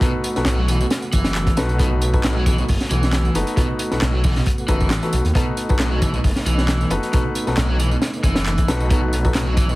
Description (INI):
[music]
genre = breakbeat, breaks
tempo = 135 BPM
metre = 4/4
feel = swing 54% on 16ths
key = unclear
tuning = A4 = 440 Hz
[part]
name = mellow tonewheel organ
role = sustained chords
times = 0.0-9.8 s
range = A3 to F#4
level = -29 LUFS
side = right 1 dB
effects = chorus vibrato, vintage 12-bit sampler grit, sidechain pumping
[part]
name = overdriven semi-hollow guitar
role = riff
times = 0.0-9.7 s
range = A2 to F#3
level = -25 LUFS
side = equal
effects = dub echo
[part]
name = warm baby grand piano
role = stabs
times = 0.0-9.4 s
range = D#4 to B4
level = -27 LUFS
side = left 2 dB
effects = dub echo
[part]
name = crunchy breakbeat drum kit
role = drums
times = 0.0-9.7 s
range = hi-hat, kick drum, snare drum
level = -21 LUFS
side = equal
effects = none
[part]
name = electronic tambourine and handclaps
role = drums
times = 0.0-9.8 s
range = none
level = -30 LUFS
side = right 1 dB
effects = none
[part]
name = detuned saw bass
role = bass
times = 0.4-9.7 s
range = F#1 to D#2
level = -21 LUFS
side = equal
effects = none
[sound]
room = small room ambience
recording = heavily compressed radio sound, multiband compression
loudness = -17 LUFS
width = side -19 dB against mid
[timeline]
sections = 0.0-9.8 A section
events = none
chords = 0.0 B7